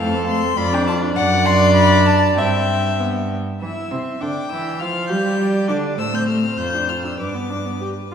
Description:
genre	quick classical-period movement for string quartet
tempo	100 BPM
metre	2/4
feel	straight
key	C major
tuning	A4 = 439 Hz
part	warm violin	melody	0.0-8.1 s	F5 to G6	-22 LUFS	left 5 dB	none
part	warm violin	second line	0.0-8.1 s	A4 to G5	-24 LUFS	left 1 dB	none
part	warm viola	accompaniment	0.0-8.1 s	A3 to G4	-23 LUFS	right 1 dB	none
part	rich cello	bass	0.0-8.1 s	F2 to G3	-21 LUFS	right 2 dB	none
room	wet scoring stage reverb, RT60 1.9 s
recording	heard from further back in the room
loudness	-16 LUFS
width	side -7 dB against mid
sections	0.0-3.6 A section; 3.6-8.1 B section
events	none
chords	0.0 F; 0.6 Dm/F; 1.2 D/F#; 2.4 C/G; 3.0 G; 3.6 C/E; 4.2 Dsus24; 4.8 Fsus2; 5.4 G5; 6.0 Am; 6.6 Dm/F; 7.2 G

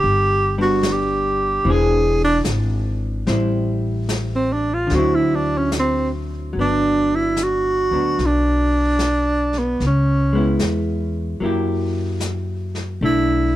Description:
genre	jazz ballad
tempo	74 BPM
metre	4/4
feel	swing 66% on 8ths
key	G major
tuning	A4 = 440 Hz
part	warm tenor saxophone	melody	0.0-13.6 s	B3 to G#4	-19 LUFS	right 2 dB	none
part	vintage hollow-body jazz guitar	accompaniment	0.0-13.6 s	D3 to G#4	-23 LUFS	left 1 dB	none
part	upright bass	bass	0.0-13.6 s	E1 to F#2	-22 LUFS	left 1 dB	none
part	vintage brush drum kit	drums	0.0-13.6 s	brushed snare drum, hi-hat, snare drum	-29 LUFS	left 1 dB	none
room	little or no reverb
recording	none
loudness	-17 LUFS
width	side -14 dB against mid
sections	0.0-6.5 A section; 6.5-13.6 B section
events	tenor saxophone solo 0.0-6.5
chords	0.0 G; 1.6 Eaug7; 3.3 Am7; 4.9 D9; 6.5 Gmaj7; 9.8 C#m7; 11.4 F#7b9; 13.0 Bm7

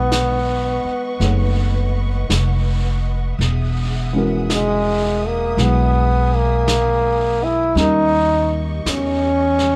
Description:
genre	jazz ballad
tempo	55 BPM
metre	4/4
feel	swing 68% on 8ths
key	unclear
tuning	A4 = 440 Hz
part	clear trombone	melody	0.0-9.8 s	G#3 to E4	-21 LUFS	equal	none
part	warm concert grand piano	accompaniment	0.0-9.8 s	B2 to C#5	-28 LUFS	equal	none
part	dark studio string section	sustained chords	0.0-9.8 s	G4 to D#6	-34 LUFS	equal	none
part	upright bass	bass	0.0-9.8 s	E1 to E2	-22 LUFS	equal	none
part	vintage brush drum kit	drums	0.1-9.8 s	brushed snare drum, hi-hat, snare drum	-30 LUFS	equal	none
room	little or no reverb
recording	none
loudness	-18 LUFS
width	mono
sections	0.0-9.8 A section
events	none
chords	0.0 B9; 3.4 Emaj9; 7.8 D#7

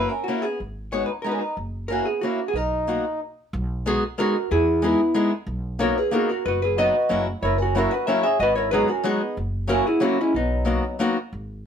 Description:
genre	musette waltz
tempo	185 BPM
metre	3/4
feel	straight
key	B major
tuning	A4 = 439 Hz
part	hollow-body jazz guitar	melody	0.0-11.0 s	B3 to E5	-22 LUFS	equal	none
part	mellow accordion	second line	0.0-3.2, 6.8-11.0 s	F#3 to A#4	-28 LUFS	right 3 dB	none
part	fingerpicked acoustic archtop guitar	accompaniment	0.0-11.2 s	F#3 to B4	-24 LUFS	left 2 dB	none
part	upright bass	bass	0.0-11.7 s	F#1 to E2	-28 LUFS	equal	none
room	moderate studio reverb, RT60 0.6 s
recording	band playing live in one room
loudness	-20 LUFS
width	side -8 dB against mid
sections	0.0-3.5 A section; 3.5-11.3 A section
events	stop 3.2-3.5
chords	0.0 F#7; 0.6 G#m7; 1.6 F#7; 2.5 Bmaj7; 3.5 B6; 4.5 Emaj7; 5.5 Bmaj7; 6.4 B/F#; 7.1 F#7; 8.4 G#m7; 9.4 F#7; 10.3 Bmaj7

